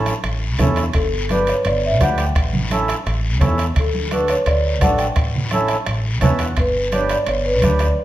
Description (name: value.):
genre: latin, cumbia.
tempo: 171 BPM.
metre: 4/4.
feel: straight.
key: unclear.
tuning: A4 = 440 Hz.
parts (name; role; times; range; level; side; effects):
mellow accordion; accompaniment; 0.0-7.9 s; C#4 to A5; -23 LUFS; right 3 dB; none.
upright bass; bass; 0.0-7.9 s; G1 to E2; -21 LUFS; equal; none.
bombo; percussion; 0.1-8.0 s; none; -23 LUFS; equal; none.
guiro; percussion; 0.1-8.0 s; none; -32 LUFS; left 5 dB; none.
timbales; percussion; 0.1-8.0 s; none; -30 LUFS; right 5 dB; none.
congas; percussion; 0.6-7.8 s; none; -24 LUFS; right 1 dB; none.
marimba with medium mallets; melody; 0.9-8.0 s; A4 to G5; -20 LUFS; equal; none.
room: moderate large studio reverb, RT60 1.2 s.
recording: none.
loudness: -16 LUFS.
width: side -14 dB against mid.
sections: 0.0-8.0 A section.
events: accordion fill 6.0-6.6.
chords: 0.0 A; 0.9 G; 2.4 A7; 3.8 D; 5.2 A7; 6.6 G.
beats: 0.24 0.60 | 0.95 1.30 1.65 2.00 | 2.36 2.71 3.06 3.41 | 3.76 4.11 4.46 4.82 | 5.17 5.52 5.87 6.22 | 6.57 6.92 7.28 7.63 | 7.98.